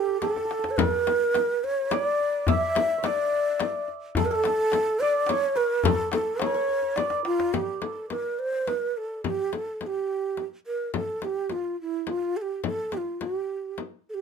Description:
Persian modal ensemble; 106 BPM; 3/4; straight; D avaz esfahan; A4 = 439 Hz
breathy mellow ney; melody; 0.0-14.2 s; E4 to E5; -25 LUFS; right 1 dB
santur; second line; 0.0-9.4 s; G4 to E5; -32 LUFS; right 6 dB
tombak; percussion; 0.1-7.5 s; -30 LUFS; left 4 dB
frame drum; percussion; 0.2-13.9 s; -29 LUFS; left 7 dB
light reverb; minimal, uncompressed stereo recording; -24 LUFS; side -6 dB against mid
0.0-7.5 A section; 7.5-14.2 B section
drum fill 0.2-0.8, 7.0-7.5

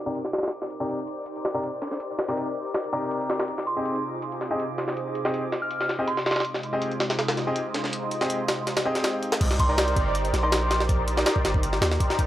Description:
drum and bass, jungle; 162 BPM; 4/4; straight; C minor; A4 = 441 Hz
lush unison pad; sustained chords; 0.0-12.3 s; C3 to Eb5; -31 LUFS; right 1 dB; chorus, phaser
drifting glass-harmonics texture; texture; 0.0-9.4 s; D6; -42 LUFS; left 1 dB; chorus, built-in reverb
clear grand piano; stabs; 0.1-11.3 s; C3 to Eb5; -30 LUFS; left 1 dB; low-pass filter, dub echo
jungle sampler-style drum kit; drums; 0.1-12.3 s; crash cymbal, hi-hat, kick drum, snare drum; -25 LUFS; equal; high-pass filter on snare, high-pass filter on kick, high-pass filter on hats, high-pass filter on cymbals
soft synth bell; melody; 3.7-6.4, 9.6-10.8 s; C6 to F6; -32 LUFS; equal; chorus, vintage 12-bit sampler grit, dub echo
long sustained 808-style bass; bass; 9.4-12.0 s; G1 to Eb2; -26 LUFS; equal
light reverb; dry, gritty hardware recording, low-pass filter; -23 LUFS; side -13 dB against mid
0.0-9.4 A section; 9.4-12.3 B section
filter sweep on grand piano 0.0-9.4; filter sweep 0.0-9.4; drop 9.4-12.3
0.0 Cm9; 3.5 Fm7/C; 9.4 Cm9

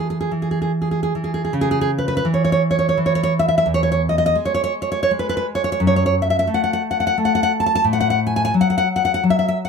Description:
romantic piece for solo classical guitar; 85 BPM; 3/4; uneven beats, rubato; C# minor; A4 = 440 Hz
nylon-string guitar; solo; 0.0-9.7 s; E2 to A5; -16 LUFS; equal
light reverb; close, detailed microphones; -16 LUFS; side -6 dB against mid
0.0-1.5 A section; 1.5-9.7 B section
0.0 N.C.; 1.5 C#m; 3.7 E6; 5.8 F#m; 7.8 F#m/A

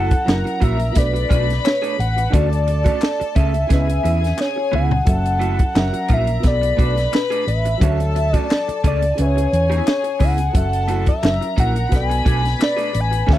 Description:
lush 1970s-style soul; 88 BPM; 4/4; swing 54% on 16ths; B dorian; A4 = 440 Hz
hollow square lead; melody; 0.0-13.4 s; B4 to G#5; -22 LUFS; left 1 dB; chorus, slapback echo
warm studio string section; second line; 0.0-13.4 s; G#4 to B5; -28 LUFS; left 6 dB
dark baby grand piano; accompaniment; 0.0-13.4 s; B2 to E5; -27 LUFS; equal
electric guitar through a small old amp; riff; 0.0-13.4 s; A3 to G#4; -27 LUFS; right 7 dB; harmonic tremolo
hollow-body short-scale fingered electric bass; bass; 0.0-13.4 s; F#1 to E2; -20 LUFS; equal
compact cocktail drum kit; drums; 0.1-13.4 s; hi-hat, kick drum, snare drum, toms; -18 LUFS; equal
group handclap; percussion; 0.3-12.8 s; -30 LUFS; left 6 dB
little or no reverb; dry, close 1970s-style studio recording; -16 LUFS; side -13 dB against mid
0.0-13.4 A section
drum fill 4.4-5.1
0.3 F#7; 1.0 Bm7; 2.3 Dmaj7; 3.7 C#m7; 5.1 F#m7; 5.8 F#7; 6.4 Bm7; 7.8 Dmaj7; 9.2 C#m7; 10.5 F#m7; 11.2 F#7; 11.9 Bm7

